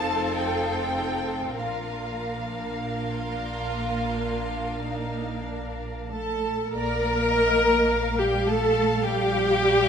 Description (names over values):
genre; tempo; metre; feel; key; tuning
classical, slow romantic movement for string orchestra; 45-53 BPM; 4/4; rubato; Bb major; A4 = 441 Hz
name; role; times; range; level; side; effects
warm symphonic violin section; melody; 0.0-9.9 s; D5 to A5; -33 LUFS; left 1 dB; none
warm symphonic violin section; second line; 0.0-9.9 s; D4 to Bb5; -32 LUFS; left 1 dB; none
rich chamber viola section; accompaniment; 0.0-9.9 s; Bb3 to Bb4; -25 LUFS; left 1 dB; none
dark symphonic cello section; bass; 0.0-9.9 s; G3 to Bb4; -32 LUFS; right 2 dB; none
rich symphonic double bass section; bass; 0.0-9.9 s; F1 to Bb1; -33 LUFS; right 3 dB; none
room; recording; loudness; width
moderate recital hall reverb, RT60 1.5 s; none; -23 LUFS; side -7 dB against mid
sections
0.0-6.7 A section; 6.7-9.9 A section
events
none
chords
0.0 F7; 1.6 Bb; 6.7 Bb5